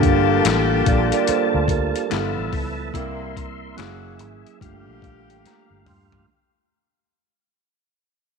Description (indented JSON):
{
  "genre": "R&B, neo-soul",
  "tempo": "72 BPM",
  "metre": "4/4",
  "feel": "swing 63% on 16ths",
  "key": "G minor",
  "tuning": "A4 = 439 Hz",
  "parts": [
    { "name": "mellow tine electric piano", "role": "accompaniment", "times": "0.0-6.3 s", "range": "F#3 to C6", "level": "-24 LUFS", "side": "right 12 dB", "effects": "fast stereo tremolo" },
    { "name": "tonewheel organ", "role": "sustained chords", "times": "0.0-6.3 s", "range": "F3 to C6", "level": "-26 LUFS", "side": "left 2 dB", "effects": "fast rotary speaker, chorus vibrato" },
    { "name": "edgy saxophone section", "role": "stabs", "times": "0.0-5.8 s", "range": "C3 to G4", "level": "-24 LUFS", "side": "left 13 dB", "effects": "none" },
    { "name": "vintage muted fingered electric bass", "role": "bass", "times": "0.0-6.2 s", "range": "F#1 to G2", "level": "-26 LUFS", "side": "left 1 dB", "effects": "none" },
    { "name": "boom bap sampler-style drum kit", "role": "drums", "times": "0.0-6.3 s", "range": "handclaps, hi-hat, kick drum, snare drum, toms", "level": "-24 LUFS", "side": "left 5 dB", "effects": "none" }
  ],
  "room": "moderate echo chamber reverb, RT60 2.2 s",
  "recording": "1960s-style stereo with parts hard left and right",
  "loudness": "-18 LUFS",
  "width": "side -5 dB against mid",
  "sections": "0.0-6.3 A section",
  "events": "fade-out 0.0-6.3; tine electric piano fill 4.6-6.3; drum fill 5.4-6.3",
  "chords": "0.0 Gm9; 2.1 G13; 2.9 C7; 3.8 F#9; 4.6 Gm9"
}